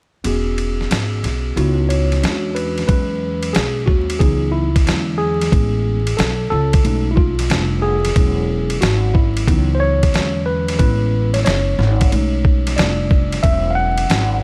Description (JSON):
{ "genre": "hip hop, jazz-hop", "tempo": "91 BPM", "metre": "4/4", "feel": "swing 65% on 16ths", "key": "E major", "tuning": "A4 = 441 Hz", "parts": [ { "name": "mellow tine electric piano", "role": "accompaniment", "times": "0.2-14.4 s", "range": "D3 to F#5", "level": "-23 LUFS", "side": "equal", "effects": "none" }, { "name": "upright bass", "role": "bass", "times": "0.2-14.4 s", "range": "E1 to E2", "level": "-21 LUFS", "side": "equal", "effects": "none" }, { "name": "dusty soul sampler-style drum kit", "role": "drums", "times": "0.2-14.3 s", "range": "hi-hat, kick drum, ride cymbal, snare drum", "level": "-21 LUFS", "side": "equal", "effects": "none" } ], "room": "little or no reverb", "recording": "vinyl crackle", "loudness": "-17 LUFS", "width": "mono", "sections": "0.2-2.9 A section; 2.9-14.4 B section", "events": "kick muted 0.2-2.9; tine electric piano solo 2.9-14.4", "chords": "0.2 E69; 1.6 C#m11; 2.2 E13; 2.9 E69; 4.2 C#m11; 4.9 E13; 5.5 Amaj9; 6.8 B13; 7.5 F69; 8.2 E69; 9.5 C#m11; 10.1 E13; 10.8 Amaj9; 12.1 B13; 12.8 F69; 13.4 E69", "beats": "| 0.25 0.91 1.57 2.23 | 2.89 3.55 4.21 4.87 | 5.52 6.18 6.84 7.50 | 8.16 8.82 9.48 10.14 | 10.80 11.46 12.12 12.78 | 13.44 14.10" }